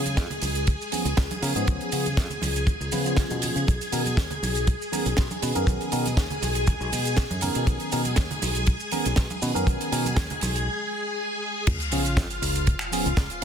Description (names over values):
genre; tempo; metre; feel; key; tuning
nu-disco, nu disco; 120 BPM; 4/4; straight; Db mixolydian; A4 = 440 Hz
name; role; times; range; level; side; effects
string machine, full ensemble; sustained chords; 0.0-13.4 s; F4 to Ab5; -30 LUFS; left 1 dB; ensemble chorus, sidechain pumping
fingered electric bass; bass; 0.0-13.4 s; Cb2 to Db3; -28 LUFS; equal; none
tight funk drum kit; drums; 0.1-13.4 s; crash cymbal, finger snaps, hi-hat, shaker, snare drum; -30 LUFS; right 3 dB; small room ambience
congas; percussion; 0.1-10.5 s; none; -37 LUFS; right 4 dB; none
kick drum; drums; 0.2-13.3 s; none; -22 LUFS; equal; small room ambience
tine electric piano; accompaniment; 0.9-13.1 s; Eb3 to Cb5; -30 LUFS; equal; phaser, ping-pong delay
sub drop; sound effects; 11.7-13.4 s; none; -33 LUFS; equal; none
room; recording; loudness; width
studio ambience; dense, heavily limited modern master; -23 LUFS; side -8 dB against mid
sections
0.0-11.7 A section; 11.7-13.4 B section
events
break 10.7-11.7; drop 11.7-13.4; impact 11.7-13.4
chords
0.0 Db7; 3.7 Cbmaj9; 11.7 Db7